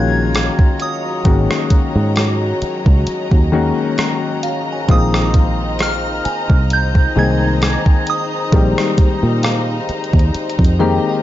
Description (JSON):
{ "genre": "contemporary R&B", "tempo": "66 BPM", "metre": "4/4", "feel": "swing 54% on 16ths", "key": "unclear", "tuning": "A4 = 440 Hz", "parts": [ { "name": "soft synth bell", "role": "melody", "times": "0.0-9.4 s", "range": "D#6 to G#6", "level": "-23 LUFS", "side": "right 2 dB", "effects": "chorus, phaser" }, { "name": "dark grand piano", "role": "accompaniment", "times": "0.0-11.2 s", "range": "D#3 to G#4", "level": "-20 LUFS", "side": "left 4 dB", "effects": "none" }, { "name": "warm studio string section", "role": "sustained chords", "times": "0.0-11.2 s", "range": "F#3 to A#5", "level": "-24 LUFS", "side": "left 1 dB", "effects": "none" }, { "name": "fingered electric bass", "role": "bass", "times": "0.0-11.0 s", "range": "G#1 to A#2", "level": "-17 LUFS", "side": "equal", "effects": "none" }, { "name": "glassy synth bell", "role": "texture", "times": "0.0-11.2 s", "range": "B#4 to A#5", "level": "-30 LUFS", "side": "right 6 dB", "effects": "chorus, digital delay" }, { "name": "crisp 8-bit digital drum machine", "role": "drums", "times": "0.3-10.8 s", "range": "hi-hat, kick drum, rim click", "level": "-14 LUFS", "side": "equal", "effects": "none" } ], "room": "little or no reverb", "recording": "dark, warm production, nothing above 7.5 kHz", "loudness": "-13 LUFS", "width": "side -13 dB against mid", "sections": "0.0-11.2 A section", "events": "none", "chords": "0.0 G#9sus4; 4.9 A#9sus4" }